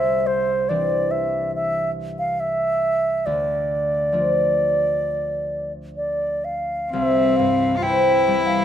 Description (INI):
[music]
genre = celtic folk, Celtic slow air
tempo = 60-71 BPM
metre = 4/4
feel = rubato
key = unclear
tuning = A4 = 440 Hz
[part]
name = reedy baroque flute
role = melody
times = 0.0-8.6 s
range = C5 to G5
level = -21 LUFS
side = right 1 dB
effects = none
[part]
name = concert harp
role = accompaniment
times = 0.0-8.6 s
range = C2 to D4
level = -24 LUFS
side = left 1 dB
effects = none
[part]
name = bright cello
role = second line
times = 6.9-8.6 s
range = C4 to F4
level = -21 LUFS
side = left 1 dB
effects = none
[part]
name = rich chamber string section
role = sustained chords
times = 6.9-8.6 s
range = C3 to B4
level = -33 LUFS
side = right 1 dB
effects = none
[sound]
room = moderate lush hall reverb, RT60 2.3 s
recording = rough home demo mix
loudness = -19 LUFS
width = side -9 dB against mid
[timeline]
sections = 0.0-6.9 A section; 6.9-8.6 B section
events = none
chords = 0.0 Cadd9; 3.3 Dm; 6.9 Cmaj7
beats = 0.70 1.55 2.40 | 3.26 4.13 5.02 5.97 | 6.93 7.83